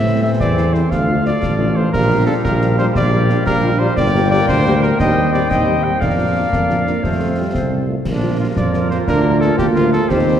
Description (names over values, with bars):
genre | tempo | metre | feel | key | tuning
military-style march for wind band | 118 BPM (dotted quarters) | 6/8 | straight | Bb major from 4.0 s | A4 = 439 Hz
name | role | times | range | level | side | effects
dark cornet | melody | 0.0-10.4 s | D4 to G5 | -21 LUFS | equal | none
clear woodwind section | second line | 0.0-10.4 s | F4 to G5 | -23 LUFS | left 3 dB | none
mellow trombone section | sustained chords | 0.0-10.4 s | E3 to D4 | -25 LUFS | right 1 dB | none
mellow tuba | bass | 0.0-10.4 s | G1 to A2 | -17 LUFS | right 1 dB | none
mellow French horn section | accompaniment | 0.1-10.3 s | F3 to G4 | -26 LUFS | left 2 dB | none
concert snare drum, concert bass drum and clash cymbals | drums | 0.4-10.4 s | none | -23 LUFS | left 1 dB | none
warm euphonium | second line | 6.5-10.4 s | F3 to D4 | -22 LUFS | right 2 dB | none
room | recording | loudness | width
wet scoring stage reverb, RT60 1.6 s | heard from further back in the room | -13 LUFS | side -9 dB against mid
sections
0.0-8.1 A section; 8.1-10.4 B section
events
none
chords
0.0 Am; 0.9 Dm; 1.9 Gm7/Bb; 4.0 Gm; 5.0 Cm/Eb; 6.0 Bb/F; 7.0 F; 8.1 Bb; 9.1 Bb/D